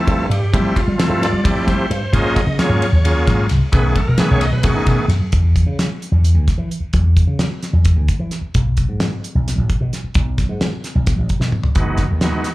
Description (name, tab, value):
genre	electric jazz fusion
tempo	262 BPM (eighths)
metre	7/8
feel	straight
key	unclear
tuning	A4 = 445 Hz
part	bright tonewheel organ	accompaniment	0.0-5.1, 11.7-12.5 s	D#3 to Eb5	-19 LUFS	equal	chorus vibrato, slapback echo
part	slap bass with an envelope filter	bass	0.1-12.3 s	F#1 to G3	-16 LUFS	equal	none
part	damped 70s drum kit	drums	0.1-12.5 s	hi-hat, kick drum, ride cymbal, snare drum, toms	-19 LUFS	equal	none
room	small room ambience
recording	live gig heard through the venue's PA, club ambience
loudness	-14 LUFS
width	side -18 dB against mid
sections	0.0-5.3 A section; 5.3-12.5 B section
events	drum fill 11.4-11.8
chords	0.0 G13sus4; 2.1 Ab13sus4; 3.7 B13; 5.3 N.C.; 11.8 F#13sus4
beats	0.07 0.30 | 0.53 0.76 0.99 1.22 1.44 1.67 1.90 | 2.13 2.36 2.59 2.81 3.04 3.27 3.50 | 3.73 3.96 4.19 4.42 4.64 4.87 5.10 | 5.33 5.56 5.79 6.02 6.25 6.48 6.71 | 6.94 7.17 7.40 7.63 7.86 8.09 8.32 | 8.54 8.78 9.01 9.23 9.46 9.69 9.92 | 10.15 10.38 10.61 10.84 11.07 11.30 11.53 | 11.76 11.99 12.22 12.45